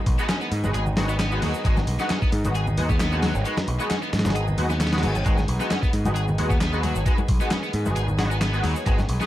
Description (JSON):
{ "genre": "breakbeat, breaks", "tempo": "133 BPM", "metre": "4/4", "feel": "swing 53% on 16ths", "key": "G# minor", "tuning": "A4 = 440 Hz", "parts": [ { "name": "bright tonewheel organ", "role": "sustained chords", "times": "0.0-9.3 s", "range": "D#3 to G#4", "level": "-34 LUFS", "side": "right 1 dB", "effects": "overdrive, slow rotary speaker, sidechain pumping" }, { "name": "growling picked electric bass", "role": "bass", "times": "0.1-9.2 s", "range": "G#1 to G#2", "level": "-24 LUFS", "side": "equal", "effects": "overdrive, tube saturation" }, { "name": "dusty soul sampler-style drum kit", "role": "drums", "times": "0.1-9.3 s", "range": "hi-hat, kick drum, snare drum", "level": "-24 LUFS", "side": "equal", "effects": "none" }, { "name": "garage drum kit", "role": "drums", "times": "0.1-9.3 s", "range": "handclaps, hi-hat, shaker", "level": "-38 LUFS", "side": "equal", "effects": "none" }, { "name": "heavy high-gain guitar", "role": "riff", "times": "0.2-9.3 s", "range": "F#3 to G#4", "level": "-31 LUFS", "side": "equal", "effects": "distortion, vintage 12-bit sampler grit, ping-pong delay" }, { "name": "band-passed chord stab", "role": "stabs", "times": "0.2-9.3 s", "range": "G#3 to F#4", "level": "-29 LUFS", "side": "left 1 dB", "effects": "ensemble chorus, cassette tape, ping-pong delay" }, { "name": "congas", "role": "percussion", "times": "0.3-9.1 s", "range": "none", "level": "-33 LUFS", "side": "left 2 dB", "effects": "none" }, { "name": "reverse cymbal", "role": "sound effects", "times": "4.5-5.3 s", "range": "none", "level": "-39 LUFS", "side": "left 5 dB", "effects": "none" } ], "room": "little or no reverb", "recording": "dark, warm production, vinyl crackle", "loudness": "-20 LUFS", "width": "side -14 dB against mid", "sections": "0.0-9.3 A section", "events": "none", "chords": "0.0 G#m7" }